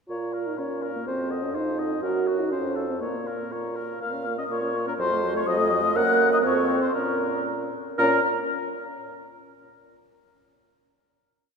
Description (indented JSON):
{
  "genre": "quick classical-period movement for wind quintet",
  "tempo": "122 BPM",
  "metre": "2/4",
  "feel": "straight",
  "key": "Bb minor",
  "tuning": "A4 = 440 Hz",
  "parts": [
    { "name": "mellow hollow concert flute", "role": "melody", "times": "0.1-8.3 s", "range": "Db5 to Gb6", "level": "-30 LUFS", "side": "left 7 dB", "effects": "none" },
    { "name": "warm oboe", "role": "second line", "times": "0.1-8.2 s", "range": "Gb4 to Gb5", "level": "-30 LUFS", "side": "left 2 dB", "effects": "none" },
    { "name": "mellow French horn", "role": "accompaniment", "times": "0.1-8.2 s", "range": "Gb3 to Gb4", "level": "-28 LUFS", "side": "right 1 dB", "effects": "none" },
    { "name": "mellow clarinet", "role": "accompaniment", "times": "0.1-8.2 s", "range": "F4 to Bb4", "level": "-32 LUFS", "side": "right 6 dB", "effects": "none" },
    { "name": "mellow bassoon", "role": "bass", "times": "0.1-8.2 s", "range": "F2 to Bb2", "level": "-28 LUFS", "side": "right 2 dB", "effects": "none" }
  ],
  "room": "wet church reverb, RT60 3.1 s",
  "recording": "recorded in a church or concert hall",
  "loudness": "-23 LUFS",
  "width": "side -5 dB against mid",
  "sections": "0.1-4.0 A section; 4.0-8.0 A section; 8.0-9.0 final chord",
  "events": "slowing down 5.5-8.0",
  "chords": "0.1 Bbm; 1.1 F7b9; 2.0 Gb; 2.5 F; 3.0 Bbm; 5.0 F7b9; 6.0 Gb; 6.4 F; 6.9 Bbm"
}